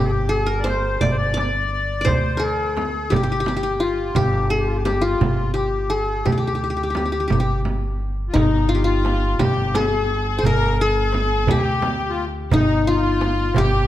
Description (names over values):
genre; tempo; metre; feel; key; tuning
Arabic maqam ensemble; 57 BPM (dotted quarters); 6/8; straight; G maqam bayati; A4 = 439 Hz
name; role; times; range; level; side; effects
qanun; melody; 0.0-13.9 s; Eb4 to D5; -23 LUFS; left 2 dB; none
accordion; second line; 0.0-13.9 s; Eb4 to D5; -26 LUFS; left 5 dB; light tremolo tuning
upright bass; bass; 0.0-13.9 s; G1 to D2; -23 LUFS; equal; none
darbuka; percussion; 0.3-13.7 s; none; -25 LUFS; right 3 dB; none
frame drum; percussion; 0.7-13.7 s; none; -28 LUFS; right 2 dB; none
clear chamber violin section; second line; 8.4-13.9 s; Eb4 to Bb4; -28 LUFS; left 1 dB; none
room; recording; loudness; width
light reverb; none; -18 LUFS; side -13 dB against mid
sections
0.0-8.3 A section; 8.3-13.9 B section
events
none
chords
none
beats
1.03 | 2.07 3.12 | 4.17 5.21 | 6.26 7.30 | 8.35 9.39 | 10.44 11.48 | 12.53 13.57